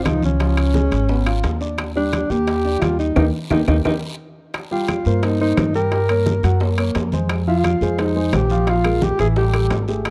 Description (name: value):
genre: Afro-Cuban jazz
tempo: 174 BPM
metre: 4/4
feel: straight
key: Eb major, C minor from 4.5 s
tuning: A4 = 439 Hz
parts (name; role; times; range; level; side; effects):
- dark alto saxophone; melody; 0.0-9.9 s; Db4 to Bb4; -24 LUFS; equal; none
- dark upright piano; accompaniment; 0.0-10.1 s; E3 to G5; -26 LUFS; equal; none
- upright bass; bass; 0.0-10.1 s; Ab1 to G2; -22 LUFS; equal; none
- bongos; percussion; 0.1-10.1 s; none; -33 LUFS; equal; none
- claves; percussion; 0.1-10.1 s; none; -38 LUFS; equal; none
- congas; percussion; 0.1-10.1 s; none; -28 LUFS; equal; none
- guiro; percussion; 0.1-10.1 s; none; -41 LUFS; equal; none
- timbales; percussion; 0.1-10.1 s; none; -28 LUFS; equal; none
room: small room reverb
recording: dry, close 1970s-style studio recording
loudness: -19 LUFS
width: mono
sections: 0.0-4.5 A section; 4.5-10.1 B section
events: band accent 3.2-4.5; drum fill 3.5-4.5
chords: 0.4 Db9; 1.8 Ebmaj7; 4.5 Cm7; 5.9 Gdim; 6.6 F#; 7.3 Fm9; 8.7 Bb5; 9.4 Gsus2